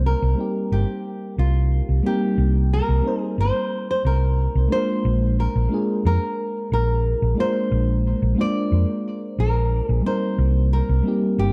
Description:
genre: sunset chillout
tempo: 90 BPM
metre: 4/4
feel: straight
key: C minor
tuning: A4 = 439 Hz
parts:
  - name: nylon-string guitar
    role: melody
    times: 0.0-11.5 s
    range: F4 to D5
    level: -29 LUFS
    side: equal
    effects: tape echo
  - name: mellow FM electric piano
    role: accompaniment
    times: 0.0-11.5 s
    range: G3 to C5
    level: -27 LUFS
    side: equal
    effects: chorus, phaser
  - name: hollow-body short-scale fingered electric bass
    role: bass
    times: 0.0-11.5 s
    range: G1 to F2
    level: -21 LUFS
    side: equal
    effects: none
room: light reverb, studio ambience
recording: dark, warm production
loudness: -21 LUFS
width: mono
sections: 0.0-11.5 A section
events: none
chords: 0.0 Cm7; 4.7 Bb7; 10.1 Cm7

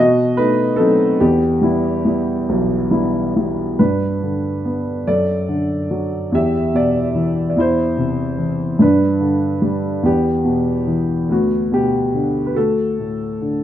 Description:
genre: classical, lyrical solo piano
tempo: 48 BPM (dotted quarters)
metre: 6/8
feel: rubato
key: E minor, G major from 3.8 s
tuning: A4 = 440 Hz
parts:
  - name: dark grand piano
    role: solo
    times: 0.0-13.6 s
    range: B1 to E5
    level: -15 LUFS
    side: equal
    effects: none
room: light reverb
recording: close, detailed microphones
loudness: -15 LUFS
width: side -11 dB against mid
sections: 0.0-3.8 A section; 3.8-13.6 B section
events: none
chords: 0.0 B7; 1.2 Em; 3.8 G; 5.1 D/F#; 6.3 Em; 7.6 C/E; 8.8 G; 10.0 Em; 11.3 G/D; 12.6 D

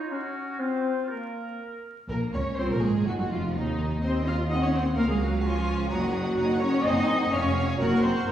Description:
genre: quick classical-period movement for symphony orchestra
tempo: 125 BPM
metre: 2/4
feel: straight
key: Bb minor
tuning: A4 = 440 Hz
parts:
  - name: flute section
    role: second line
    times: 0.0-1.6 s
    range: Bb4 to Eb5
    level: -34 LUFS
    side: left 6 dB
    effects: none
  - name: warm clarinet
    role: second line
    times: 0.0-1.6 s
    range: Bb3 to Eb4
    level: -31 LUFS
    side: left 2 dB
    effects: none
  - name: warm oboe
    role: second line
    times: 0.0-1.8 s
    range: F4 to Bb4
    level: -38 LUFS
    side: right 2 dB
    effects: none
  - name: dark chamber violin section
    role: melody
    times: 2.1-8.3 s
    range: Eb4 to Gb6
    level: -40 LUFS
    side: left 2 dB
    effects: none
  - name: rich chamber violin section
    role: second line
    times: 2.1-8.3 s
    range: Eb4 to Db6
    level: -34 LUFS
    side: equal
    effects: none
  - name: rich chamber viola section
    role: accompaniment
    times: 2.1-8.3 s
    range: Eb4 to F5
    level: -30 LUFS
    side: right 1 dB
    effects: none
  - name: clear chamber double bass section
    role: bass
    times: 2.1-8.3 s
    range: F1 to Eb2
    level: -28 LUFS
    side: equal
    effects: none
  - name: rich studio cello section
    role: bass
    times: 2.1-8.3 s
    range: Eb3 to F4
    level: -29 LUFS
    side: right 1 dB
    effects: none
  - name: dark French horn section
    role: sustained chords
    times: 2.6-8.3 s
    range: C4 to Gb4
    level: -32 LUFS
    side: left 2 dB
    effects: none
room: wet scoring stage reverb, RT60 1.5 s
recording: heard from further back in the room, vinyl crackle, small room reverb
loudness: -24 LUFS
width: side -11 dB against mid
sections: 0.0-2.1 A section; 2.1-8.3 B section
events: none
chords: 0.0 N.C.; 2.1 Bbm; 3.1 Ebm; 4.0 F5/Eb; 5.0 Bbm/Db; 5.9 Ebm7/Gb; 6.9 Ab7/Gb; 7.3 Db/F; 7.8 Gb

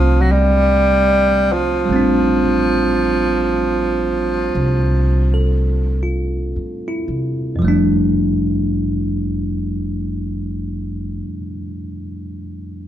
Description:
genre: jazz ballad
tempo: 36-51 BPM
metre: 4/4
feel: swing 66% on 8ths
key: F major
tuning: A4 = 443 Hz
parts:
  - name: breathy tenor saxophone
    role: melody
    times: 0.0-6.1 s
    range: F3 to G3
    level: -17 LUFS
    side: right 1 dB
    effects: none
  - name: bell-like tine electric piano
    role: accompaniment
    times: 0.0-12.9 s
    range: F2 to A4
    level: -20 LUFS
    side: equal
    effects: none
  - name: upright bass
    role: bass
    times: 0.0-11.2 s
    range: F1 to C3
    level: -20 LUFS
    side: equal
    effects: none
room: moderate stone room reverb, RT60 1.0 s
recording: band playing live in one room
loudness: -15 LUFS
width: side -11 dB against mid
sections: 0.0-7.6 A section; 7.6-12.9 B section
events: slowing down 0.0-7.6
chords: 0.0 F6

